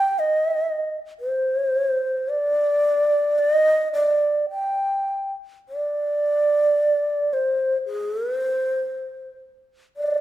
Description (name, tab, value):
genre	japanese traditional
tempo	51-57 BPM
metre	2/4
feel	rubato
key	unclear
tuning	A4 = 440 Hz
part	breathy mellow long shakuhachi	solo	0.0-10.2 s	C5 to G5	-20 LUFS	right 1 dB	none
room	moderate recital hall reverb, RT60 1.6 s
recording	minimal, uncompressed stereo recording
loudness	-20 LUFS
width	side -13 dB against mid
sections	0.0-5.7 A section; 5.7-10.2 B section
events	none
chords	none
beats	0.16 | 1.21 2.28 | 3.38 4.50 | 5.66 6.77 | 7.83 8.89 | 9.94